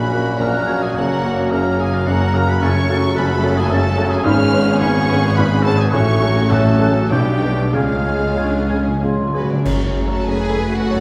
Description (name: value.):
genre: classical, romantic movement for piano and orchestra.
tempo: 93-111 BPM.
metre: 3/4.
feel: rubato.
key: F# minor.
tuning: A4 = 440 Hz.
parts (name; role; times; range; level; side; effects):
rich studio violin section; melody; 0.0-11.0 s; B4 to E#6; -31 LUFS; equal; none.
warm baby grand piano; melody; 0.0-11.0 s; F#1 to C#5; -21 LUFS; equal; none.
bright large flute ensemble; second line; 0.0-9.4 s; A#5 to A6; -33 LUFS; equal; none.
warm clarinet; second line; 0.0-9.7 s; C#4 to F#4; -31 LUFS; equal; none.
warm oboe; second line; 0.0-9.0 s; E#4 to E#5; -29 LUFS; equal; none.
warm studio violin section; second line; 0.0-11.0 s; A#3 to A4; -30 LUFS; equal; none.
rich studio viola section; accompaniment; 0.0-11.0 s; C#3 to F#4; -27 LUFS; equal; none.
bright trombone section; sustained chords; 0.0-9.3 s; A#2 to B3; -30 LUFS; equal; none.
dark French horn section; sustained chords; 0.0-9.3 s; C#4 to G#4; -29 LUFS; equal; none.
mellow tuba; bass; 0.0-11.0 s; F#1 to C#2; -27 LUFS; equal; none.
rich studio cello section; bass; 0.0-11.0 s; C#2 to B4; -27 LUFS; equal; none.
rich studio double bass section; bass; 0.0-11.0 s; F#1 to F#2; -27 LUFS; equal; none.
timpani; percussion; 7.7-10.5 s; F#2 to C#3; -28 LUFS; equal; none.
clash cymbals and concert bass drum; percussion; 9.7-10.8 s; none; -26 LUFS; equal; none.
room: wet recital hall reverb, RT60 1.5 s.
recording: heard from further back in the room.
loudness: -17 LUFS.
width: mono.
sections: 0.0-9.7 A section; 9.7-11.0 B section.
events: timpani fill 7.7-9.7; band accent 9.7-10.3.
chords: 0.0 F#/A#; 1.0 F#; 2.6 F#m; 4.3 C#7/G#; 5.9 F#m/A; 7.1 G/B; 7.7 C#; 9.7 F#m.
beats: 0.40 | 0.96 1.52 2.07 | 2.62 3.17 3.72 | 4.26 4.81 5.37 | 5.93 6.50 7.11 | 7.74 8.38 9.02 | 9.65 10.27 10.87.